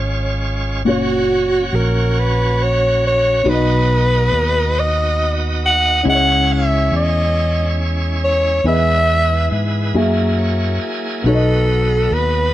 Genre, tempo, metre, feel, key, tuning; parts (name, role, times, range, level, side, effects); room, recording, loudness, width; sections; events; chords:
gospel; 46 BPM (dotted quarters); 6/8; straight; A4 = 438 Hz
raspy alto saxophone; melody; 0.0-12.5 s; F#4 to F#5; -17 LUFS; equal
dark baby grand piano; accompaniment; 0.0-12.5 s; A#2 to E5; -21 LUFS; left 2 dB
bright tonewheel organ; sustained chords; 0.0-12.5 s; F#3 to G#5; -24 LUFS; right 3 dB; slow rotary speaker, overdrive
fingered electric bass; bass; 0.0-12.5 s; F#1 to G#2; -18 LUFS; equal
light reverb; -14 LUFS; side -14 dB against mid
0.0-12.5 A section
tonewheel organ fill 10.0-11.3
0.0 C#; 0.9 F#; 3.5 B; 6.1 C#m; 8.7 E; 10.0 F#9; 11.3 B